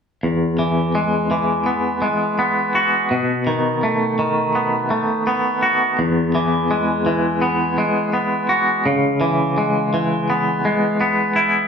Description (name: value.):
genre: rock.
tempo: 84 BPM.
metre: 4/4.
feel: straight.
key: E major.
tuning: A4 = 443 Hz.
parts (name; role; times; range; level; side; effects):
twangy electric guitar; arpeggios; 0.2-11.7 s; E2 to F#4; -16 LUFS; equal; tremolo.
room: wet large studio reverb, RT60 0.9 s.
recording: band playing live in one room.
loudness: -16 LUFS.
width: side -6 dB against mid.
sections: 0.2-11.7 A section.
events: none.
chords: 0.2 Eadd9; 3.1 B7; 6.0 Eadd9; 8.9 C#m7.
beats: | 0.23 0.95 1.67 2.39 | 3.11 3.83 4.54 5.26 | 5.98 6.70 7.42 8.13 | 8.85 9.57 10.29 11.01.